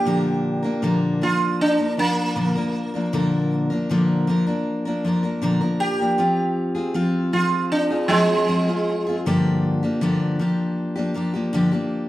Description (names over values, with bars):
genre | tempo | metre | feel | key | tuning
acoustic folk duo or small band | 79 BPM | 4/4 | straight | Bb mixolydian | A4 = 441 Hz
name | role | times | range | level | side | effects
sitar | melody | 0.0-10.3 s | F3 to G4 | -22 LUFS | right 2 dB | none
picked steel-string acoustic guitar | accompaniment | 0.0-12.1 s | G2 to Bb4 | -21 LUFS | left 1 dB | none
room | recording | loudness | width
wet large studio reverb, RT60 0.9 s | dark, warm production | -19 LUFS | side -15 dB against mid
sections
0.0-12.1 A section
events
sitar solo 0.0-12.1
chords
0.1 Bb; 6.2 Fm; 9.2 Gm7